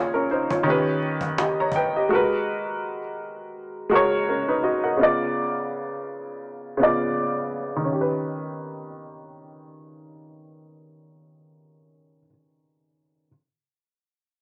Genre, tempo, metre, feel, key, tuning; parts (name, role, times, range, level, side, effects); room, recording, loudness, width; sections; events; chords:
lo-fi hip hop; 83 BPM; 4/4; swing 56% on 16ths; A4 = 440 Hz
warm upright piano; accompaniment; 0.0-13.3 s; Bb2 to Bb5; -24 LUFS; equal; cassette tape, low-pass filter
cajon; drums; 0.3-1.9 s; -31 LUFS; equal; vintage 12-bit sampler grit
moderate studio ambience, RT60 0.5 s; small speaker sound; -24 LUFS; mono
0.0-7.9 A section; 7.9-10.8 B section
filter sweep on upright piano 0.0-7.9
0.0 Bbm7; 0.6 Eb7b13; 2.1 Abm9; 5.0 Db7b9; 7.9 Eb7b13